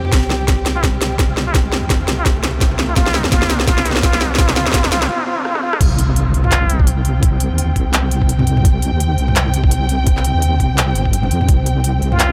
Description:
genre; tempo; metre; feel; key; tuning
half-time drum and bass; 169 BPM; 4/4; swing 57% on 16ths, half-time; C minor; A4 = 440 Hz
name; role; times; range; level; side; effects
dark studio string section; sustained chords; 0.0-12.3 s; C3 to G5; -28 LUFS; equal; vintage 12-bit sampler grit, sidechain pumping
deep soft wobble bass; bass; 0.0-12.3 s; G1 to F2; -20 LUFS; equal; chorus, tube saturation
drum and bass drum kit; drums; 0.0-12.3 s; crash cymbal, handclaps, hi-hat, rim click, snare drum, toms; -21 LUFS; equal; high-pass filter on snare, high-pass filter on hats, high-pass filter on toms, high-pass filter on cymbals, high-pass filter on room
riser, swell and impact; sound effects; 0.0-7.2 s; none; -29 LUFS; equal; none
electronic kick drum; drums; 0.1-11.6 s; none; -17 LUFS; equal; none
trumpet with plunger mute; melody; 0.8-6.9, 12.1-12.3 s; F4; -25 LUFS; equal; low-pass filter, tape echo
room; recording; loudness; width
light reverb, digital ambience; none; -16 LUFS; mono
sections
0.0-5.8 A section; 5.8-12.3 B section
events
build-up 0.0-5.8; drum fill 0.0-5.1, 5.5-5.8; break 5.1-5.8; swell 5.1-5.8; drop 5.8-12.3; impact 5.8-7.2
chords
0.0 C5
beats
| 0.13 0.48 0.84 1.19 | 1.55 1.90 2.26 2.61 | 2.97 3.32 3.68 4.03 | 4.39 4.74 5.10 5.45 | 5.81 6.16 6.52 6.87 | 7.23 7.58 7.94 8.29 | 8.65 9.00 9.36 9.71 | 10.07 10.42 10.78 11.13 | 11.49 11.84 12.20

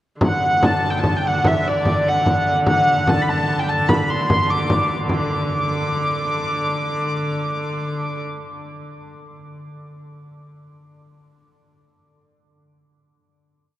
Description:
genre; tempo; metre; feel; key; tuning
medieval dance; 100 BPM (dotted quarters); 6/8; straight; D mixolydian; A4 = 439 Hz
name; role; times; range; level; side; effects
clear hurdy-gurdy; drone; 0.2-8.2 s; D3; -26 LUFS; equal; none
frame drum; percussion; 0.2-5.3 s; none; -22 LUFS; equal; none
rich hurdy-gurdy; melody; 0.3-8.2 s; D5 to D6; -20 LUFS; equal; none
room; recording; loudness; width
wet cathedral reverb, RT60 6.4 s; worn, warbling old tape, cassette tape, warbly pitch drift; -17 LUFS; side -14 dB against mid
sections
0.2-5.1 A section; 5.1-7.4 final note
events
speeding up 0.2-7.4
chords
none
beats
| 0.22 0.84 | 1.46 2.07 | 2.69 3.29 | 3.90 4.50 | 5.10 5.69 | 6.28 6.86

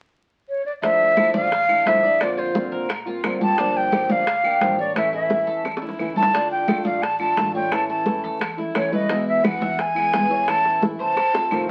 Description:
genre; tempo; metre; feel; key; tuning
latin, Cuban son and guajira; 174 BPM; 4/4; straight; D harmonic minor; A4 = 440 Hz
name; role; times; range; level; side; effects
breathy concert flute; melody; 0.5-11.7 s; C5 to A5; -22 LUFS; equal; none
fingerpicked steel-string acoustic guitar; accompaniment; 0.8-11.7 s; B2 to G4; -29 LUFS; equal; none
Cuban tres; arpeggios; 0.8-11.7 s; D4 to E5; -33 LUFS; equal; none
upright bass; bass; 0.8-11.7 s; F1 to Bb2; -42 LUFS; equal; none
bongos; percussion; 0.8-11.6 s; none; -31 LUFS; equal; none
congas; percussion; 0.8-11.7 s; none; -29 LUFS; equal; none
claves; percussion; 1.2-11.7 s; none; -36 LUFS; equal; none
room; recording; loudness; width
wet studio reverb, RT60 0.5 s; very old 78 rpm record, vinyl crackle; -21 LUFS; mono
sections
0.8-11.7 A section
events
drum fill 5.6-6.3, 11.2-11.7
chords
0.0 N.C.; 0.8 Dmadd9; 2.2 Bbadd9; 3.6 Gm7; 5.0 A; 6.3 Dm; 7.7 A; 9.1 E; 10.5 A; 11.2 F7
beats
0.14 0.48 | 0.83 1.17 1.51 1.86 | 2.20 2.55 2.89 3.23 | 3.58 3.92 4.27 4.61 | 4.96 5.30 5.65 5.99 | 6.34 6.68 7.03 7.37 | 7.72 8.06 8.41 8.75 | 9.10 9.44 9.79 10.13 | 10.48 10.82 11.17 11.52

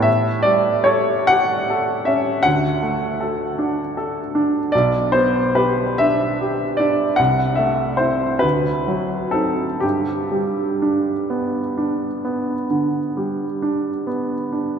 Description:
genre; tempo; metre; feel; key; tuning
classical, romantic nocturne for solo piano; 40-54 BPM (dotted quarters); 12/8; rubato; G major; A4 = 442 Hz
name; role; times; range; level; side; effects
clear baby grand piano; solo; 0.0-14.8 s; B1 to F#5; -17 LUFS; equal; none
room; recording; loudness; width
wet cathedral reverb, RT60 6.0 s; in a vast, echoing space; -17 LUFS; side -7 dB against mid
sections
0.0-14.8 A section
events
none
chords
0.1 A7; 2.5 D; 4.7 G/B; 7.2 Am/C; 8.4 D7b9; 9.8 G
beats
| 0.07 1.30 2.45 3.58 | 4.72 6.00 7.19 8.43 | 9.83 11.30 12.70 14.08

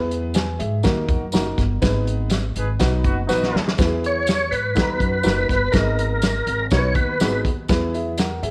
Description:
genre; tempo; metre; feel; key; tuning
uptempo 1960s-style soul; 123 BPM; 4/4; straight; unclear; A4 = 444 Hz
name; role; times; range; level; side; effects
clear grand piano; accompaniment; 0.0-8.5 s; F#3 to A#5; -27 LUFS; equal; none
upright bass; bass; 0.0-8.5 s; F#1 to G#2; -26 LUFS; equal; none
warm soul drum kit; drums; 0.1-8.5 s; hi-hat, kick drum, snare drum; -24 LUFS; equal; none
tambourine; percussion; 0.3-8.3 s; none; -39 LUFS; equal; none
warm horn section; second line; 2.6-3.8 s; D#4 to B4; -29 LUFS; equal; none
tonewheel organ; melody; 4.1-7.4 s; A#4 to C#5; -24 LUFS; equal; overdrive, chorus vibrato, slow rotary speaker
room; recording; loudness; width
light reverb, studio ambience; none; -21 LUFS; mono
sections
0.0-8.5 A section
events
band accent 1.8-3.8; drum fill 3.3-3.8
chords
0.0 E; 0.8 D#m; 1.8 G#m; 2.8 B; 3.8 E; 4.8 D#m; 5.7 G#m; 6.7 B; 7.7 E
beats
0.36 0.85 1.34 | 1.83 2.32 2.81 3.30 | 3.79 4.28 4.76 5.25 | 5.74 6.23 6.72 7.21 | 7.70 8.18

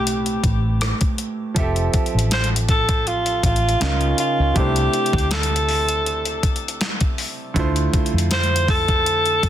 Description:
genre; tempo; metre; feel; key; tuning
contemporary R&B; 80 BPM; 4/4; swing 54% on 16ths; unclear; A4 = 438 Hz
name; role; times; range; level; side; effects
warm alto saxophone; melody; 0.0-9.5 s; F4 to C5; -21 LUFS; equal; ping-pong delay
clear concert grand piano; accompaniment; 0.0-9.5 s; A2 to E5; -26 LUFS; right 4 dB; none
vintage muted fingered electric bass; bass; 0.0-9.5 s; F1 to F2; -22 LUFS; equal; none
crisp 8-bit digital drum machine; drums; 0.1-9.5 s; hi-hat, kick drum, rim click, snare drum; -22 LUFS; left 1 dB; none
room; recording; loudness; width
little or no reverb; dense, heavily limited modern master; -17 LUFS; side -11 dB against mid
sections
0.0-9.5 A section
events
none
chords
0.0 Am7; 1.6 Fmaj7; 3.8 C#6; 4.6 C6; 7.6 Dm7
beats
0.06 0.81 | 1.56 2.31 3.06 3.81 | 4.56 5.31 6.06 6.81 | 7.56 8.31 9.06

